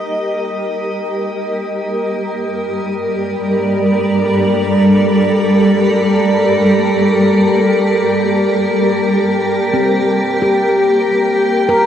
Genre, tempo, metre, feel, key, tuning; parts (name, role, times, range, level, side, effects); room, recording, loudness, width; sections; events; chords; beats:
ambient; free time; A4 = 440 Hz
granular cloud pad; sustained chords; 0.0-11.9 s; G3 to Eb5; -13 LUFS; equal; built-in reverb
glass harmonica; texture; 9.2-11.9 s; G4 to G5; -19 LUFS; equal
handpan; arpeggios; 9.7-11.9 s; C4 to Bb4; -15 LUFS; left 1 dB
wet shimmer reverb, RT60 7.5 s; -12 LUFS; side -9 dB against mid
0.0-11.9 A section
0.0 Eb; 1.8 Gmadd9; 9.2 Eb (rootless)
free time